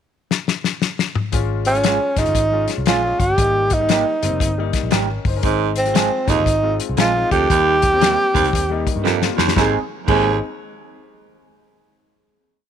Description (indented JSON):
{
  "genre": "uptempo 1960s-style soul",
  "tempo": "116 BPM",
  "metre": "4/4",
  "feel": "swing 64% on 8ths",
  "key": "Ab major",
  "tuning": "A4 = 444 Hz",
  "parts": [
    { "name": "warm soul drum kit", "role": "drums", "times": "0.3-10.2 s", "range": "crash cymbal, hi-hat, kick drum, snare drum, toms", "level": "-20 LUFS", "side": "left 4 dB", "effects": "none" },
    { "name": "warm concert grand piano", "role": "accompaniment", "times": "1.3-10.4 s", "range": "G3 to C5", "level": "-27 LUFS", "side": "left 12 dB", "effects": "none" },
    { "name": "vintage muted picked electric bass", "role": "bass", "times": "1.3-10.4 s", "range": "F1 to G2", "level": "-23 LUFS", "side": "equal", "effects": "none" },
    { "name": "breathy tenor saxophone", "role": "melody", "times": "1.7-10.4 s", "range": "C4 to Ab4", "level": "-18 LUFS", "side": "right 1 dB", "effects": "none" },
    { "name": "electric guitar through a small old amp", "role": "stabs", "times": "1.8-10.3 s", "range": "G3 to Ab4", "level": "-24 LUFS", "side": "right 14 dB", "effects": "lush chorus" },
    { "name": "breathy baritone saxophone", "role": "riff", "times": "5.4-10.4 s", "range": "Eb2 to Ab2", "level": "-22 LUFS", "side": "right 12 dB", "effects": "none" }
  ],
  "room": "little or no reverb",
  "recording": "1960s-style stereo with parts hard left and right",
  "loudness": "-15 LUFS",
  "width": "side -8 dB against mid",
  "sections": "0.0-1.3 pickup bar; 1.3-9.6 verse; 9.6-11.6 final chord",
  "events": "drum fill 0.3-1.3, 9.1-9.6",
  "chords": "0.0 N.C.; 1.3 Db; 3.4 Eb; 5.4 Ab; 7.5 Eb; 9.6 Ab"
}